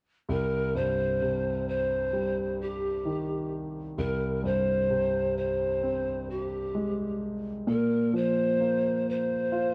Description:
pop; 65 BPM; 4/4; straight; C minor; A4 = 440 Hz
breathy mellow pan flute; melody; 0.3-9.7 s; G4 to C5; -31 LUFS; equal
warm grand piano; accompaniment; 0.3-9.7 s; C2 to F4; -32 LUFS; equal
light reverb; dark, warm production; -29 LUFS; mono
0.3-9.7 A section
0.3 Cm; 4.0 Abmaj7/C; 7.7 Bbsus2

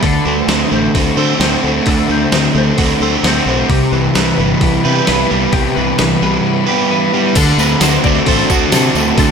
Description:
rock, shoegaze and dream pop; 131 BPM; 4/4; straight; D mixolydian; A4 = 440 Hz
clean electric guitar; arpeggios; 0.0-9.3 s; G4 to D5; -22 LUFS; left 8 dB; ensemble chorus, tape echo
overdriven semi-hollow guitar; riff; 0.0-9.3 s; C3 to C5; -15 LUFS; right 9 dB; reverse reverb
thick fuzz guitar; riff; 0.0-9.3 s; C3 to F#4; -16 LUFS; left 10 dB; distortion, lush chorus
growling fingered electric bass; bass; 0.0-9.3 s; G1 to D3; -19 LUFS; equal; overdrive
gated 80s digital drum machine; drums; 0.0-9.3 s; crash cymbal, hi-hat, kick drum, snare drum; -17 LUFS; equal; gated reverb, gated reverb snare
tambourine; percussion; 7.4-9.3 s; -26 LUFS; right 10 dB
moderate recital hall reverb, RT60 1.6 s, digital ambience; -11 LUFS; side -6 dB against mid
0.0-7.4 A section; 7.4-9.3 B section
0.0 D7; 3.7 Cmaj7; 7.4 D7

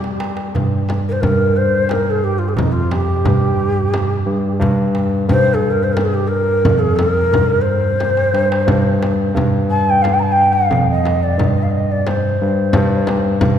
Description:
Arabic maqam ensemble; 89 BPM; 3/4; straight; G maqam bayati; A4 = 440 Hz
barky tine electric piano; bass; 0.0-13.6 s; F2 to G3; -18 LUFS; equal
darbuka; percussion; 0.0-13.6 s; -23 LUFS; right 3 dB
frame drum; percussion; 0.6-13.6 s; -23 LUFS; left 1 dB
breathy mellow ney; melody; 1.1-13.4 s; Eb4 to Bb5; -17 LUFS; left 1 dB
wet church reverb, RT60 3.4 s; recorded in a church or concert hall; -13 LUFS; side -9 dB against mid
0.6-13.6 A section
drum fill 0.0-0.6, 8.0-8.7

